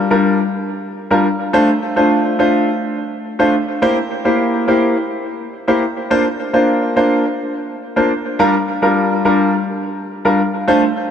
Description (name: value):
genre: dancehall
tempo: 105 BPM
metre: 4/4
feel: straight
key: unclear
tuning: A4 = 440 Hz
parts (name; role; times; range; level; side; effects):
- clear concert grand piano; solo; 0.0-10.8 s; G3 to C5; -14 LUFS; equal; lush chorus, tape echo
room: wet plate reverb, RT60 3.3 s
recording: dreamy mix soaked in reverb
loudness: -14 LUFS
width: side -8 dB against mid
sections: 0.0-10.7 A section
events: none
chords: 0.0 Gm7; 1.5 Dm7; 3.8 C7; 6.1 Bbadd9; 8.4 Gm7